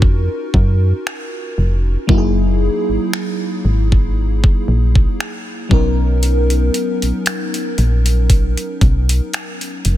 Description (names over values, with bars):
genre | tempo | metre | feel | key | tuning
contemporary R&B | 58 BPM | 4/4 | swing 54% on 16ths | unclear | A4 = 442 Hz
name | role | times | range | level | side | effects
FM electric piano with soft pad layer | accompaniment | 0.0-10.0 s | Gb3 to Bb4 | -21 LUFS | left 1 dB | chorus
solid FM bass | bass | 0.0-10.0 s | F1 to Gb2 | -15 LUFS | equal | none
smooth R&B drum kit | drums | 0.0-10.0 s | finger snaps, hi-hat, kick drum | -16 LUFS | equal | soft clipping on snare
room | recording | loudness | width
little or no reverb | dense, heavily limited modern master | -14 LUFS | side -14 dB against mid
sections
0.0-10.0 A section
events
none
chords
0.0 Ebm9; 2.1 Gb13; 5.7 Bmaj9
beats
0.02 1.05 | 2.09 3.12 4.16 5.19 | 6.23 7.26 8.30 9.33